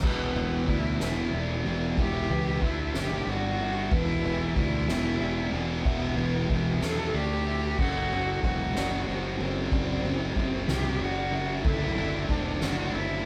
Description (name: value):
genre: post-rock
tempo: 62 BPM (dotted quarters)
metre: 6/8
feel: straight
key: E minor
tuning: A4 = 441 Hz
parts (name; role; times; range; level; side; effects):
- warm cello; melody; 0.0-13.3 s; B3 to A4; -35 LUFS; equal; none
- vibraphone with soft mallets; arpeggios; 0.0-13.3 s; A4 to E5; -42 LUFS; equal; none
- thick fuzz guitar; riff; 0.0-13.3 s; E2 to D4; -34 LUFS; equal; distortion
- fuzz fingered electric bass; bass; 0.0-13.2 s; E1 to E2; -34 LUFS; equal; overdrive
- soft-mallet drum kit; drums; 0.0-13.1 s; crash cymbal, kick drum, ride cymbal, snare drum; -33 LUFS; equal; none
room: moderate studio reverb, RT60 0.8 s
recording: band playing live in one room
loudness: -28 LUFS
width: mono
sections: 0.0-13.3 A section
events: none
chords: 0.0 Em; 2.6 D5; 3.3 G5; 3.9 E5; 7.1 D5; 7.8 F#dim; 11.6 D